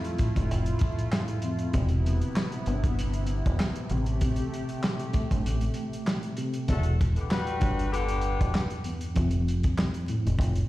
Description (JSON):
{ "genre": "hip hop, boom-bap hip-hop", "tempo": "97 BPM", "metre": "4/4", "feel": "swing 55% on 16ths", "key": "E phrygian", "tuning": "A4 = 436 Hz", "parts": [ { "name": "mellow tine electric piano", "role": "accompaniment", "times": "0.0-10.7 s", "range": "E2 to B3", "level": "-31 LUFS", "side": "equal", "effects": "medium stereo tremolo, cassette tape, high-pass filter, low-pass filter" }, { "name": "lush unison pad", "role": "sustained chords", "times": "0.0-6.7 s", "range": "C3 to G4", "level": "-36 LUFS", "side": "right 1 dB", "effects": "chorus, high-pass filter, low-pass filter" }, { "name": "warm soul drum kit", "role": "drums", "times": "0.0-10.7 s", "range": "handclaps, hi-hat, kick drum, snare drum", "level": "-29 LUFS", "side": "equal", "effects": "none" }, { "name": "deep dub fingered electric bass", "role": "bass", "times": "0.4-10.6 s", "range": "E1 to A1", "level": "-27 LUFS", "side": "equal", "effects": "none" }, { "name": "mellow horn section", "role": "stabs", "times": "6.7-8.7 s", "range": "D3 to B4", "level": "-32 LUFS", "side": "left 4 dB", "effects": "high-pass filter, low-pass filter, digital delay" } ], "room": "light reverb", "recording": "played on a big sound system in a bare room, stone room reverb, vinyl crackle", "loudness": "-25 LUFS", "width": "side -16 dB against mid", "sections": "0.0-6.7 A section; 6.7-10.7 B section", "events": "kick muted 5.4-6.7", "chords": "0.0 Fmaj7; 1.7 Cmaj7/E; 3.9 Am7; 6.7 Em9; 9.2 F", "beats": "0.50 1.12 | 1.74 2.35 2.97 3.59 | 4.21 4.83 5.45 6.07 | 6.68 7.30 7.92 8.54 | 9.16 9.78 10.40" }